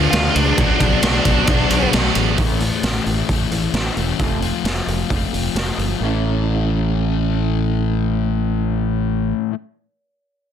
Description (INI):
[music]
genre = quiet-loud alternative rock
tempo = 132 BPM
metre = 4/4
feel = straight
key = A major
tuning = A4 = 440 Hz
[part]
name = scooped high-gain guitar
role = riff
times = 0.0-2.4 s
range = B2 to F#4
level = -22 LUFS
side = right 16 dB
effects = distortion
[part]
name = sludgy distorted guitar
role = riff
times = 0.0-9.5 s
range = A2 to F#4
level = -22 LUFS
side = left 15 dB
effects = overdrive
[part]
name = growling fingered electric bass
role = bass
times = 0.0-9.3 s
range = E1 to D2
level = -21 LUFS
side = right 1 dB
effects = overdrive
[part]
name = octave-fuzz lead guitar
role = melody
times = 0.1-1.9 s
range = D4 to F4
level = -21 LUFS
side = equal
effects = distortion, slapback echo
[part]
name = raw garage drum kit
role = drums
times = 0.1-5.9 s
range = hi-hat, kick drum, ride cymbal, snare drum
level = -20 LUFS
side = right 1 dB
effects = none
[part]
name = electric guitar through a small old amp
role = arpeggios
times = 2.4-9.5 s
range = A2 to E4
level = -28 LUFS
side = right 6 dB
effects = harmonic tremolo
[sound]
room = little or no reverb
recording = dense, heavily limited modern master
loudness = -16 LUFS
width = side -8 dB against mid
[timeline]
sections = 0.0-2.4 A section; 2.4-6.0 B section; 6.0-9.6 C section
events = none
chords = 0.0 Dm; 0.6 Bm; 2.4 A; 4.2 F; 6.0 A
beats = 0.13 | 0.58 1.03 1.48 1.93 | 2.38 2.83 3.28 3.73 | 4.19 4.64 5.09 5.55 | 6.00 6.46 6.91 7.37 | 7.82 8.28 8.73 9.19